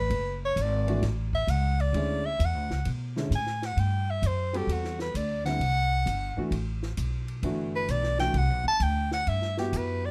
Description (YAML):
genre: modal jazz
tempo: 131 BPM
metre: 4/4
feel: swing 68% on 8ths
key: C lydian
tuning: A4 = 438 Hz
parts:
  - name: breathy soprano saxophone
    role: melody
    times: 0.0-10.1 s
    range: F#4 to A5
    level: -32 LUFS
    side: equal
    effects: plate reverb
  - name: upright bass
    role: bass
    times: 0.0-10.1 s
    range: F#1 to B2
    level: -31 LUFS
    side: equal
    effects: none
  - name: compact cocktail drum kit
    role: drums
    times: 0.1-9.9 s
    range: hi-hat, kick drum, ride cymbal, snare drum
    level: -44 LUFS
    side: equal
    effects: none
  - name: warm grand piano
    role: accompaniment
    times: 0.9-10.1 s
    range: D3 to A4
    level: -35 LUFS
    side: equal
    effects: none
room: little or no reverb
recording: close, detailed microphones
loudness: -28 LUFS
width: mono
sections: 0.0-10.1 A section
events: soprano saxophone solo 0.0-10.1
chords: 0.0 Dmaj9; 3.8 Cmaj9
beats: | 0.10 0.56 1.02 1.48 | 1.94 2.40 2.85 3.31 | 3.77 4.23 4.69 5.14 | 5.60 6.06 6.52 6.98 | 7.43 7.89 8.35 8.81 | 9.27 9.72